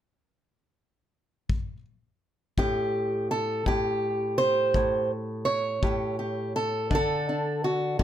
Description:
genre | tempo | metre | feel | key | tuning
acoustic country blues, solo or duo | 55 BPM (dotted quarters) | 12/8 | straight | A mixolydian | A4 = 440 Hz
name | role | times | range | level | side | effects
kick drum | drums | 1.5-8.0 s | none | -28 LUFS | left 2 dB | none
fingerpicked acoustic archtop guitar | melody | 2.6-8.0 s | A2 to C#5 | -25 LUFS | right 1 dB | none
room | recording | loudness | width
light reverb | none | -25 LUFS | side -10 dB against mid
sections
0.0-2.6 A section; 2.6-8.0 B section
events
none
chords
0.0 N.C.; 2.6 A7; 6.9 D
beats
0.41 1.49 | 2.58 3.66 4.75 5.83 | 6.92 8.00

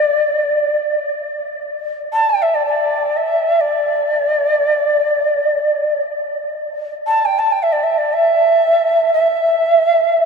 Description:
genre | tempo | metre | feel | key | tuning
world meditative, free-time meditation music | free time | none | none | unclear | A4 = 442 Hz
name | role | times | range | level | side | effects
Native American-style cedar flute | solo | 0.0-10.3 s | D5 to A5 | -14 LUFS | equal | analog delay
room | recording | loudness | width
wet huge ambient reverb, RT60 8.1 s | dreamy mix soaked in reverb | -14 LUFS | side -5 dB against mid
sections
0.0-10.3 A section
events
none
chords
none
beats
free time

